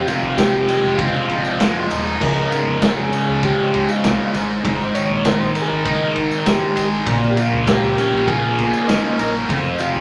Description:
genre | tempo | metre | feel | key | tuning
psychedelic rock | 99 BPM | 4/4 | straight | Db lydian | A4 = 440 Hz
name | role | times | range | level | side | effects
combo organ | melody | 0.0-10.0 s | Eb4 to Db5 | -24 LUFS | equal | none
string machine, full ensemble | sustained chords | 0.0-10.0 s | Ab3 to Eb6 | -34 LUFS | equal | none
thick fuzz guitar | riff | 0.0-10.0 s | Db2 to Bb4 | -21 LUFS | equal | distortion, phaser
raw garage drum kit | drums | 0.1-9.9 s | crash cymbal, kick drum, ride cymbal, snare drum | -24 LUFS | equal | none
tambourine | percussion | 0.1-10.0 s | none | -44 LUFS | equal | none
fingered electric bass | bass | 0.2-10.0 s | Db1 to Db2 | -33 LUFS | equal | none
room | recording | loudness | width
wet club reverb, RT60 0.5 s | none | -18 LUFS | mono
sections
0.0-10.0 A section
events
none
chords
0.0 Fm7; 2.2 Db; 4.3 Absus2; 7.1 Bbmadd9; 9.5 Fm7

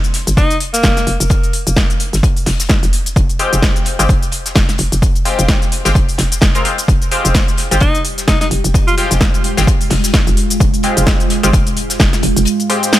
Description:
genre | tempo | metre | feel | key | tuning
bass house | 129 BPM | 4/4 | swing 57% on 16ths | F minor | A4 = 440 Hz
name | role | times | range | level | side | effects
hollow knocking FM bass | bass | 0.0-12.5 s | F1 to G1 | -18 LUFS | equal | overdrive, sidechain pumping
big-room dance drum kit | drums | 0.0-13.0 s | cabasa, hi-hat, snare drum | -18 LUFS | left 1 dB | none
warm soul drum kit | drums | 0.1-13.0 s | hi-hat, snare drum | -27 LUFS | left 3 dB | sidechain pumping on hats, high-pass filter on hats, high-pass filter on snare, high-pass filter on room
edgy alto saxophone | melody | 0.4-1.2, 7.8-9.1 s | Bb3 to F4 | -20 LUFS | equal | digital delay
electronic kick drum | drums | 0.4-12.1 s | none | -14 LUFS | equal | overdrive
band-passed chord stab | stabs | 3.4-13.0 s | Ab3 to Bb4 | -19 LUFS | left 2 dB | chorus, phaser, sidechain pumping, digital delay
deep dark ambient pad | sustained chords | 8.1-13.0 s | Ab3 to G4 | -20 LUFS | right 2 dB | chorus, built-in reverb, sidechain pumping
room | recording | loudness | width
little or no reverb | none | -11 LUFS | side -14 dB against mid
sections
0.0-13.0 A section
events
none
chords
0.0 Fmadd9

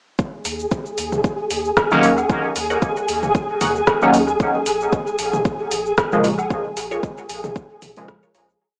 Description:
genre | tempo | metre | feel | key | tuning
dub techno | 114 BPM | 4/4 | swing 55% on 16ths | Eb minor | A4 = 440 Hz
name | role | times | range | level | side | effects
deep house drum kit | drums | 0.2-8.6 s | hi-hat, rim click, shaker | -26 LUFS | equal | overdrive, cassette tape, dub echo
electronic kick drum | drums | 0.2-8.2 s | none | -26 LUFS | equal | overdrive, cassette tape
flickering grainy texture | texture | 0.5-8.6 s | Ab4 | -25 LUFS | equal | built-in reverb, sidechain pumping, cassette tape
soft dub sub bass | bass | 0.5-8.6 s | Bb1 to Eb2 | -37 LUFS | equal | sidechain pumping
electronic toms and woodblock | percussion | 1.1-7.9 s | none | -32 LUFS | equal | overdrive, sidechain pumping on toms, cassette tape, sidechain pumping on perc, dub echo
resonant sweep polysynth | stabs | 1.9-8.1 s | Bb2 to Db4 | -21 LUFS | equal | chorus, phaser, cassette tape, sidechain pumping, dub echo
filtered dub chord stab | riff | 2.0-8.5 s | F4 to Gb5 | -31 LUFS | equal | phaser, sidechain pumping, cassette tape, dub echo
room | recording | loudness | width
wet small room reverb, RT60 0.5 s | home recording on cassette, small speaker sound | -20 LUFS | mono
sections
0.2-8.6 groove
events
filter sweep on analog polysynth 0.2-8.6; fade-out 5.8-8.6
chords
0.2 Ebm7; 4.4 Bbm7

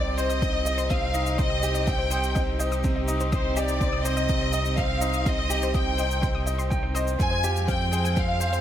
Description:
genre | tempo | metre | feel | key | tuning
piano and strings electronica | 124 BPM | 4/4 | straight | C minor | A4 = 440 Hz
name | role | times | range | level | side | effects
warm studio violin section | melody | 0.0-8.6 s | C5 to Ab5 | -28 LUFS | equal | none
warm studio string section | sustained chords | 0.0-8.6 s | C3 to F5 | -32 LUFS | right 3 dB | none
bright grand piano | riff | 0.0-8.6 s | C4 to G5 | -31 LUFS | left 1 dB | ping-pong delay
round analog bass | bass | 0.0-8.6 s | C2 to F2 | -28 LUFS | equal | tube saturation, sidechain pumping
analog pluck | arpeggios | 0.2-8.6 s | C5 to Eb6 | -35 LUFS | left 4 dB | chorus, cassette tape, sidechain pumping, ping-pong delay
shaker | drums | 0.2-8.6 s | none | -38 LUFS | left 2 dB | none
electronic kick drum | drums | 0.4-8.3 s | none | -27 LUFS | equal | overdrive
room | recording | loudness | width
light reverb | none | -22 LUFS | side -10 dB against mid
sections
0.0-8.6 A section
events
none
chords
0.0 Cm; 7.2 Fmadd9

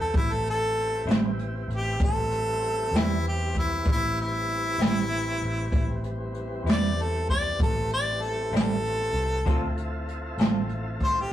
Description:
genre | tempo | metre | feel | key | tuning
slow blues | 64 BPM (dotted quarters) | 12/8 | straight | A minor | A4 = 441 Hz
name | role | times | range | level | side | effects
clear harmonica | melody | 0.0-11.3 s | E4 to D5 | -27 LUFS | equal | none
tonewheel organ | sustained chords | 0.0-11.3 s | E3 to A4 | -36 LUFS | equal | slow rotary speaker
vintage muted fingered electric bass | bass | 0.0-11.3 s | A1 to E2 | -31 LUFS | equal | none
jazz brush drum kit | drums | 0.1-11.1 s | hi-hat, kick drum, snare drum | -25 LUFS | right 1 dB | none
electric guitar through a small old amp | accompaniment | 1.1-10.6 s | A2 to A4 | -34 LUFS | left 2 dB | tremolo
room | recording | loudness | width
moderate studio reverb, RT60 0.6 s | rough rehearsal-room recording | -24 LUFS | side -12 dB against mid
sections
0.0-11.3 A section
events
harmonica solo 0.0-11.3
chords
0.0 Am7; 9.4 Dm7

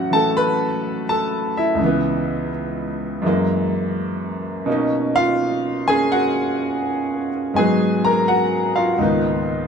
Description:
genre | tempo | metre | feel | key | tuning
solo jazz | 83 BPM | 4/4 | swing 67% on 8ths | unclear | A4 = 440 Hz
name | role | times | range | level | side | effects
bright baby grand piano | solo | 0.0-9.7 s | C#2 to B5 | -18 LUFS | equal | none
room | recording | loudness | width
moderate club reverb, RT60 0.5 s | dark, warm production, lossy compression artefacts | -18 LUFS | side -6 dB against mid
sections
0.0-9.7 A section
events
none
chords
0.0 A6; 1.8 C#m7; 3.2 F#9; 4.7 Bmaj9; 7.5 G#m7; 9.0 C#13

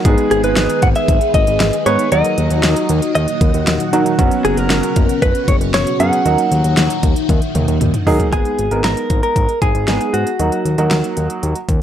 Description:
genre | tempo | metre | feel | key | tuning
synth-pop | 116 BPM | 4/4 | straight | G# minor | A4 = 440 Hz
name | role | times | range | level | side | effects
warm concert grand piano | accompaniment | 0.0-11.5 s | F#3 to B4 | -19 LUFS | right 2 dB | none
phased string machine | sustained chords | 0.0-8.3 s | A#2 to G#4 | -21 LUFS | left 1 dB | ensemble chorus, phaser
fat analog bass | bass | 0.1-11.8 s | F#1 to D#3 | -18 LUFS | equal | none
pop drum kit | drums | 0.1-11.8 s | hi-hat, kick drum, snare drum, toms | -17 LUFS | equal | none
direct-recorded clean electric guitar | melody | 0.3-10.9 s | F#4 to F#5 | -18 LUFS | equal | wide subtle chorus, analog delay
room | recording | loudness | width
light reverb | dry, gritty hardware recording, transformer saturation | -13 LUFS | side -10 dB against mid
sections
0.0-8.3 A section; 8.3-11.8 B section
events
drum fill 7.3-8.3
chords
0.1 G#m; 2.1 D#m; 4.2 F#sus4; 6.3 D#m; 8.3 G#madd9; 10.4 D#m

